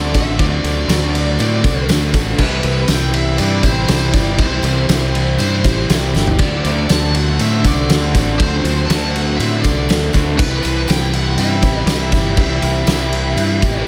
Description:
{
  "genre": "rock, shoegaze and dream pop",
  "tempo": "120 BPM",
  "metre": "4/4",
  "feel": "straight",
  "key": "D mixolydian",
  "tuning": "A4 = 440 Hz",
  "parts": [
    { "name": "bluesy overdriven lead guitar", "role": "melody", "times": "0.0-13.8 s", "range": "B4 to A5", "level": "-26 LUFS", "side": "equal", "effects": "distortion, delay" },
    { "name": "fingerpicked twelve-string acoustic guitar", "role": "arpeggios", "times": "0.0-13.9 s", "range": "F#3 to A4", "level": "-29 LUFS", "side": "equal", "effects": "lush chorus, delay" },
    { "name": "overdriven semi-hollow guitar", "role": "riff", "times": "0.0-13.9 s", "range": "C3 to F#4", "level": "-23 LUFS", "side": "equal", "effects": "lush chorus" },
    { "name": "twangy electric guitar", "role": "riff", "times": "0.0-13.9 s", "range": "D3 to F#4", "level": "-29 LUFS", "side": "equal", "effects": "none" },
    { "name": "growling fingered electric bass", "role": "bass", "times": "0.0-13.9 s", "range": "G1 to A2", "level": "-21 LUFS", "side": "equal", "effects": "overdrive" },
    { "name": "loose indie drum kit", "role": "drums", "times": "0.1-13.7 s", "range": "crash cymbal, kick drum, ride cymbal, snare drum, toms", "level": "-20 LUFS", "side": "equal", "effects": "none" },
    { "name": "tambourine", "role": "percussion", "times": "0.1-13.7 s", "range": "none", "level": "-36 LUFS", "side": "equal", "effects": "none" }
  ],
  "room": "moderate plate reverb, RT60 1.5 s, small room ambience",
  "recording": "dreamy mix soaked in reverb",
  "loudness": "-15 LUFS",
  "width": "mono",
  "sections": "0.0-13.9 A section",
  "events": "drum fill 6.1",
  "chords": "0.0 D7; 2.4 C; 6.4 D7; 10.4 C"
}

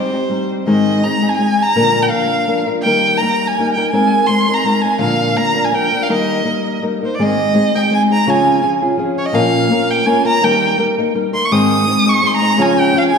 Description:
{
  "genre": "mexican folk, mariachi",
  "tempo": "166 BPM",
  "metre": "3/4",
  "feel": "swing 54% on 8ths",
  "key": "Eb major, Ab major from 7.2 s",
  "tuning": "A4 = 439 Hz",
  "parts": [
    { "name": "rich violin", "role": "melody", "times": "0.0-13.2 s", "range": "C5 to Eb6", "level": "-16 LUFS", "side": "right 2 dB", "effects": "none" },
    { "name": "nylon-string guitar", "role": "accompaniment", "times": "0.0-13.2 s", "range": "Ab2 to Bb4", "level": "-15 LUFS", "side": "left 2 dB", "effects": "none" }
  ],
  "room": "wet scoring stage reverb, RT60 1.7 s",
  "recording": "recorded in a church or concert hall",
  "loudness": "-12 LUFS",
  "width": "side -6 dB against mid",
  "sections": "0.0-7.2 A section; 7.2-13.2 B section",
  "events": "none",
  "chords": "0.0 Cm; 0.7 Ab; 1.8 Bb; 2.8 Eb; 3.9 Abadd9; 5.0 Bb; 6.1 Eb; 7.2 Ab; 8.3 Db; 9.4 Bbm; 10.4 Eb; 11.5 Ab; 12.6 Db"
}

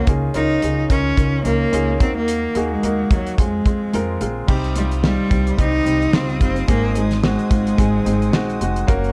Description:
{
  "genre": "piano-driven pop",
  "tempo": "109 BPM",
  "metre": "4/4",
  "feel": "swing 56% on 16ths",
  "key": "unclear",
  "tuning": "A4 = 440 Hz",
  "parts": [
    { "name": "bright cello", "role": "melody", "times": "0.0-8.6 s", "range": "Gb3 to Eb4", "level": "-23 LUFS", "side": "equal", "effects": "none" },
    { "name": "clear baby grand piano", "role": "accompaniment", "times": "0.0-9.1 s", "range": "Ab2 to Db5", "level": "-26 LUFS", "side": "equal", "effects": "none" },
    { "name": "upright bass", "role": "bass", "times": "0.0-9.1 s", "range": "F1 to F2", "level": "-25 LUFS", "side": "equal", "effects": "none" },
    { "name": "damped 70s drum kit", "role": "drums", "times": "0.1-9.1 s", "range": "crash cymbal, hi-hat, kick drum, snare drum", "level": "-21 LUFS", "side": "equal", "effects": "none" },
    { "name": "clear studio string section", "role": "sustained chords", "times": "4.5-9.1 s", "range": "Bb4 to Eb6", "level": "-39 LUFS", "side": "equal", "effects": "none" }
  ],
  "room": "moderate studio reverb, RT60 0.6 s",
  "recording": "cassette tape",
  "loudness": "-19 LUFS",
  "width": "mono",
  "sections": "0.0-4.5 A section; 4.5-9.1 B section",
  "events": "none",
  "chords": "0.1 Dbadd9; 2.0 Ebm; 3.4 Fm; 4.5 Cm; 6.7 Ab"
}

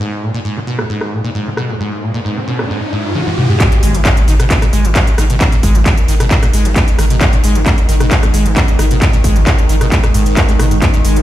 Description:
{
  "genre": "driving peak-time techno",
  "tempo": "133 BPM",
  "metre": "4/4",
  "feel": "straight",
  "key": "G# minor",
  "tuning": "A4 = 440 Hz",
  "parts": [
    { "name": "acid bass, saw", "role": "riff", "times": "0.0-11.2 s", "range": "G2 to G#3", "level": "-19 LUFS", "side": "equal", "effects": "wide subtle chorus, sidechain pumping, ping-pong delay" },
    { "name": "riser and impact", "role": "sound effects", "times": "1.3-5.4 s", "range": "none", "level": "-21 LUFS", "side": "equal", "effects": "none" },
    { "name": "techno drum kit", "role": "drums", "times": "0.8-11.2 s", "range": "handclaps, hi-hat, rim click, toms", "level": "-18 LUFS", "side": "equal", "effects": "overdrive, low-pass filter on snare, studio reverb, sidechain pumping on toms, low-pass filter on toms, sidechain pumping on hats, low-pass filter on hats" },
    { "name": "deep dark ambient pad", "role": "drone", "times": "4.8-11.2 s", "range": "G#2 to D#3", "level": "-21 LUFS", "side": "right 1 dB", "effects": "chorus, built-in reverb, sidechain pumping" },
    { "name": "electronic kick drum", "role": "drums", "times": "3.6-10.9 s", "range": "none", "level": "-12 LUFS", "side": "equal", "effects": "overdrive, studio reverb" },
    { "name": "warm sub bass", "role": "bass", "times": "3.8-11.2 s", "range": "G#1", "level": "-13 LUFS", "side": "equal", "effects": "sidechain pumping, low-pass filter" }
  ],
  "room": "light reverb",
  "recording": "played on a big sound system in a bare room, stone room reverb",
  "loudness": "-10 LUFS",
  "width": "side -13 dB against mid",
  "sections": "0.0-3.6 A section; 3.6-11.2 B section",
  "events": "riser 1.3-3.6; drum fill 3.2-3.6; drop 3.6-11.2; impact 3.6-5.4",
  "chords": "0.0 G#5"
}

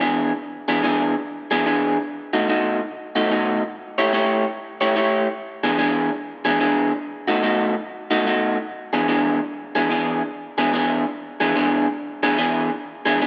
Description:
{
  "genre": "blues",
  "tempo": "146 BPM",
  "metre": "4/4",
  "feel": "swing 64% on 8ths",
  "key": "E mixolydian",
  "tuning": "A4 = 439 Hz",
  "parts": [
    { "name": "electric guitar through a small old amp", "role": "solo", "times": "0.0-13.3 s", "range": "B2 to C#5", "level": "-22 LUFS", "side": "equal", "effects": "analog delay" }
  ],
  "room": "moderate scoring stage reverb, RT60 1.7 s",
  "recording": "none",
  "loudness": "-22 LUFS",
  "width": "mono",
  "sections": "0.0-8.7 A section; 8.7-13.3 A section",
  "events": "none",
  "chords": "0.0 E7; 2.1 B7; 3.7 A7; 5.4 E7; 7.0 B7; 8.7 E7"
}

